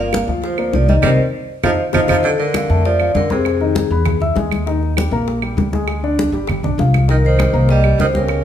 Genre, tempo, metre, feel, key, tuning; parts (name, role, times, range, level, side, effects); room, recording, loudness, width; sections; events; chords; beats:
Afro-Cuban jazz; 198 BPM; 4/4; straight; Bb major; A4 = 440 Hz
vibraphone with medium hard mallets; melody; 0.0-4.2, 7.1-8.4 s; Ab4 to F5; -20 LUFS; equal; tape echo
clear tenor saxophone; second line; 0.0-4.0, 7.1-8.4 s; C3 to Bb3; -22 LUFS; right 4 dB
warm concert grand piano; accompaniment; 0.0-8.4 s; D3 to E6; -22 LUFS; left 4 dB
upright bass; bass; 0.0-8.4 s; G1 to F2; -17 LUFS; equal
bongos; percussion; 0.1-8.4 s; -28 LUFS; left 6 dB
claves; percussion; 0.1-8.4 s; -27 LUFS; right 8 dB
congas; percussion; 0.1-8.4 s; -23 LUFS; equal
moderate large studio reverb, RT60 1.1 s; band playing live in one room; -14 LUFS; side -10 dB against mid
0.0-2.2 A section; 2.2-8.4 B section
band accent 1.0-2.2; drum fill 1.6-2.2
0.0 Gm7; 1.0 Cm; 1.6 F7; 2.2 Bbmaj7; 3.5 Fm7; 4.1 E; 4.7 Ebmaj7; 5.9 G5; 6.5 G7; 7.1 Cm7
0.13 0.43 0.73 | 1.04 1.34 1.64 1.94 | 2.25 2.55 2.85 3.15 | 3.46 3.76 4.06 4.36 | 4.67 4.97 5.27 5.57 | 5.88 6.18 6.48 6.78 | 7.08 7.39 7.69 7.99 | 8.29